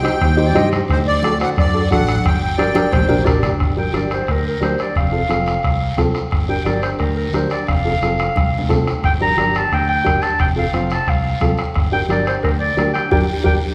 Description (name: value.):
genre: latin, cumbia.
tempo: 177 BPM.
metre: 4/4.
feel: straight.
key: G harmonic minor, G minor from 3.6 s.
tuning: A4 = 439 Hz.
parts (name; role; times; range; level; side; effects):
accordion; melody; 0.0-3.2 s; C5 to G5; -24 LUFS; equal; light tremolo tuning.
dark upright piano; accompaniment; 0.0-13.6 s; C4 to C5; -24 LUFS; equal; none.
fingered electric bass; bass; 0.0-13.6 s; F1 to G2; -24 LUFS; equal; none.
bombo; percussion; 0.0-13.5 s; none; -23 LUFS; equal; none.
guiro; percussion; 0.0-13.5 s; none; -38 LUFS; equal; none.
breathy clarinet; second line; 0.2-13.5 s; Bb4 to Bb5; -24 LUFS; equal; none.
congas; percussion; 0.2-13.5 s; none; -29 LUFS; equal; none.
room: wet recital hall reverb, RT60 1.6 s.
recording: recorded in a church or concert hall.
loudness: -17 LUFS.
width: mono.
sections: 0.0-3.6 A section; 3.6-13.7 B section.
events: drum fill 2.2-3.6, 8.4-9.0; clarinet solo 3.6-13.7; band accent 13.1-13.7.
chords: 0.0 Cm; 0.9 D; 2.2 Gm; 5.0 F; 6.3 Gm; 7.7 F; 9.0 Gm; 10.4 F; 11.8 Gm.